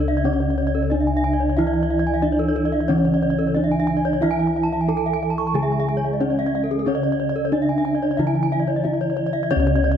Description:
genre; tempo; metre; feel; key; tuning
Balinese gamelan; 91 BPM; 4/4; straight; C# pelog; A4 = 442 Hz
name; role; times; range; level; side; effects
gamelan-type bronze metallophone; melody; 0.0-10.0 s; C#4 to A4; -23 LUFS; equal; none
gamelan-type bronze metallophone; accompaniment; 0.0-10.0 s; C#3 to G#3; -27 LUFS; right 3 dB; none
gamelan-type bronze metallophone; arpeggios; 0.0-10.0 s; A4 to A5; -28 LUFS; right 8 dB; none
gamelan-type bossed gongs; bass; 0.0-10.0 s; C#2 to E4; -23 LUFS; left 1 dB; none
gamelan-type bronze metallophone; arpeggios; 0.1-9.9 s; G#4 to C#6; -26 LUFS; left 3 dB; none
room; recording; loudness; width
moderate plate reverb, RT60 3.6 s; dark, warm production; -18 LUFS; side -8 dB against mid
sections
0.0-10.0 A section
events
none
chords
none

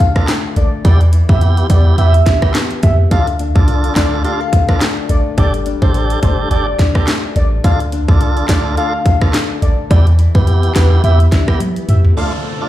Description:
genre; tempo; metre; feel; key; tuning
dancehall; 106 BPM; 4/4; swing 56% on 16ths; D dorian; A4 = 440 Hz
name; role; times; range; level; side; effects
warm velvety synth lead; melody; 0.0-12.7 s; B4 to F5; -22 LUFS; left 1 dB; chorus, ping-pong delay
nylon-string guitar; arpeggios; 0.0-12.7 s; D3 to A4; -23 LUFS; left 6 dB; none
island pop drum kit; drums; 0.0-12.2 s; handclaps, hi-hat, kick drum, rim click, snare drum, toms; -14 LUFS; equal; none
tonewheel organ; accompaniment; 0.2-12.7 s; A3 to A4; -22 LUFS; right 5 dB; overdrive, sidechain pumping
clean 808-style bass; bass; 0.6-12.1 s; G1 to F2; -12 LUFS; equal; none
warm woodwind section; sustained chords; 12.2-12.7 s; F3 to D5; -27 LUFS; right 3 dB; sidechain pumping
downlifter; sound effects; 12.2-12.7 s; none; -24 LUFS; right 2 dB; none
room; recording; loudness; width
digital ambience; played on a big sound system in a bare room, large studio reverb; -11 LUFS; side -14 dB against mid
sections
0.0-12.2 A section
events
drum fill 11.6-12.2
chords
0.0 Dm; 0.8 Em; 3.1 Dm; 5.4 Gsus2; 7.6 Dm; 9.9 Em; 12.2 Dm

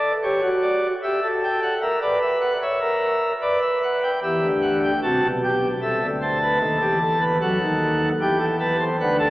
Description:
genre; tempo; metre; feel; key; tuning
classical, baroque-style 3-part fugue for pipe organ; 75 BPM; 3/4; straight; E minor; A4 = 440 Hz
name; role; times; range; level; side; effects
pipe organ, sparkling flutes; solo; 0.0-9.3 s; B1 to A5; -19 LUFS; equal; none
room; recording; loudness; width
wet cathedral reverb, RT60 5.0 s; heard from further back in the room, AM radio sound; -19 LUFS; side -17 dB against mid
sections
0.0-4.2 A section; 4.2-9.3 B section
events
none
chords
0.0 Bm (rootless); 1.0 Em/G; 1.8 F#7/A#; 3.4 Bm; 4.2 Em; 5.8 Am/C; 6.6 B7/D#; 8.2 Em

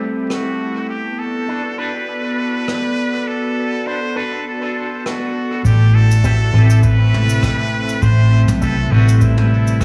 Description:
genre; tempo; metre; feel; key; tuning
ambient dub; 101 BPM; 4/4; swing 54% on 16ths; A dorian; A4 = 440 Hz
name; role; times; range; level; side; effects
warm analog pad; sustained chords; 0.0-9.8 s; A3 to D5; -25 LUFS; equal; chorus, vintage 12-bit sampler grit
electric guitar with an envelope filter; stabs; 0.0-9.8 s; G3 to B4; -30 LUFS; equal; tremolo, dub echo
trumpet with straight mute; melody; 0.3-9.8 s; E4 to C5; -26 LUFS; equal; dub echo
jazz brush drum kit; drums; 0.3-9.8 s; cabasa, rim click, toms; -26 LUFS; equal; dub echo
vintage muted fingered electric bass; bass; 5.6-9.8 s; A1 to B1; -15 LUFS; equal; none
electronic kick drum; drums; 5.6-9.8 s; none; -23 LUFS; equal; none
drifting glass-harmonics texture; texture; 6.8-9.8 s; A3 to A4; -33 LUFS; equal; none
room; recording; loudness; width
light reverb, small room ambience; studio reverb; -16 LUFS; mono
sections
0.0-5.6 A section; 5.6-9.8 B section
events
none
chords
0.0 Am9; 0.9 Bm7; 5.6 Am9

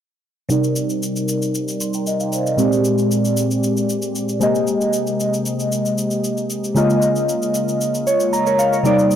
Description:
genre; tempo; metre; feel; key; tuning
amapiano; 115 BPM; 4/4; straight; C minor; A4 = 440 Hz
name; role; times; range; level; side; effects
glassy digital keys; accompaniment; 0.5-9.2 s; Bb2 to C6; -17 LUFS; equal; chorus, low-pass filter
shaker; drums; 0.5-9.2 s; none; -29 LUFS; left 2 dB; none
room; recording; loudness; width
light reverb, digital ambience; blown-out, overdriven recording, overdrive; -17 LUFS; side -9 dB against mid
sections
0.5-9.2 A section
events
filter sweep on synth keys 0.5-9.2; synth keys fill 7.8-8.8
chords
0.5 Cm7; 2.6 Bb13; 4.4 Abmaj7/C; 6.8 Db69

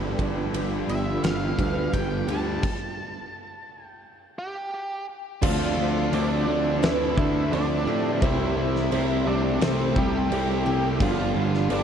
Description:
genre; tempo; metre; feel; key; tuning
rock, shoegaze and dream pop; 86 BPM; 4/4; straight; G mixolydian; A4 = 442 Hz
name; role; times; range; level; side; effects
dark analog pad; sustained chords; 0.0-2.6 s; F4 to B5; -36 LUFS; right 3 dB; chorus
picked twelve-string acoustic guitar; arpeggios; 0.0-11.8 s; G4 to D5; -34 LUFS; equal; wide subtle chorus, ping-pong delay
fuzz guitar; riff; 0.0-11.8 s; G2 to D4; -31 LUFS; left 11 dB; distortion, lush chorus
overdriven electric guitar; riff; 0.0-11.8 s; G2 to D4; -31 LUFS; left 1 dB; none
twelve-string electric guitar; riff; 0.0-11.8 s; G2 to A4; -29 LUFS; right 9 dB; reverse reverb
fuzz picked electric bass; bass; 0.0-11.8 s; G1 to A2; -28 LUFS; equal; overdrive
huge arena drum kit; drums; 0.2-11.8 s; crash cymbal, kick drum, ride cymbal, snare drum; -29 LUFS; equal; vintage 12-bit sampler grit
octave-fuzz lead guitar; melody; 0.9-11.8 s; C4 to A5; -31 LUFS; equal; distortion, ping-pong delay
room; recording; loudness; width
moderate plate reverb, RT60 2.7 s; dreamy mix soaked in reverb; -22 LUFS; side -8 dB against mid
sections
0.0-5.4 A section; 5.4-11.8 B section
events
stop 2.6-5.4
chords
0.0 G9; 2.6 N.C.; 5.4 Dm7; 8.2 C6; 11.0 G9

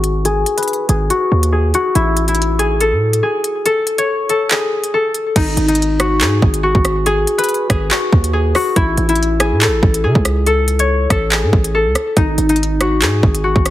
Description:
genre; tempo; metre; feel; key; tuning
hip hop, drill; 141 BPM; 4/4; half-time; G# phrygian; A4 = 439 Hz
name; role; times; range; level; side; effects
concert harp; melody; 0.0-13.7 s; D#4 to C#5; -16 LUFS; left 2 dB; low-pass filter
hard-hitting 808-style bass; bass; 0.0-13.7 s; G#1 to C#3; -17 LUFS; right 1 dB; none
drill drum kit; drums; 0.0-13.7 s; crash cymbal, handclaps, hi-hat, kick drum, rim click; -16 LUFS; right 1 dB; none
room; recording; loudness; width
digital ambience; heavily compressed radio sound; -13 LUFS; side -14 dB against mid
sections
0.0-5.4 A section; 5.4-13.7 B section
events
filter sweep on harp 0.0-5.4; kick muted 3.7-5.4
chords
0.0 G#5; 2.0 Amaj7; 5.4 G#5; 8.8 Amaj7; 12.2 G#5

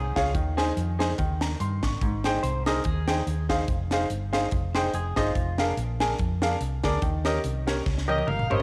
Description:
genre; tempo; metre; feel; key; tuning
uptempo gospel; 144 BPM; 4/4; swing 56% on 8ths; Ab major; A4 = 440 Hz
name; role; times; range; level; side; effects
clean electric guitar; second line; 0.0-5.6, 8.1-8.6 s; F4 to Db5; -37 LUFS; equal; cassette tape
clear grand piano; accompaniment; 0.0-8.6 s; Ab2 to Db6; -30 LUFS; equal; cassette tape
hollow-body short-scale fingered electric bass; bass; 0.0-8.6 s; F1 to G2; -31 LUFS; equal; none
crisp fusion drum kit; drums; 0.2-8.6 s; hi-hat, kick drum, snare drum, toms; -32 LUFS; equal; cassette tape
warm saxophone section; melody; 8.1-8.6 s; Eb5 to F5; -31 LUFS; equal; none
room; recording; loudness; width
light reverb, small room ambience; home recording on cassette; -26 LUFS; mono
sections
0.0-8.6 A section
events
drum fill 7.9-8.6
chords
0.3 Ab/Eb; 1.2 Eb; 2.0 Abmaj7; 3.7 Fm7; 5.4 Bb7/F; 7.0 Eb7

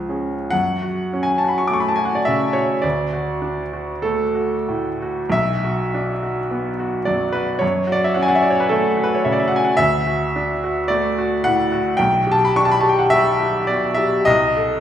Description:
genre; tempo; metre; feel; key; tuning
classical, romantic nocturne for solo piano; 44-56 BPM; 4/4; rubato; F# minor; A4 = 438 Hz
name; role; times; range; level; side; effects
clear grand piano; solo; 0.0-14.8 s; B1 to D6; -17 LUFS; equal; none
room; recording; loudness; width
wet recital hall reverb, RT60 1.7 s; heard from further back in the room; -17 LUFS; side -10 dB against mid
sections
0.5-14.8 A section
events
none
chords
0.0 C#; 0.5 F#m; 2.8 D; 5.3 Bm; 7.6 F#m; 9.8 D; 12.0 G/B; 14.3 Cm6

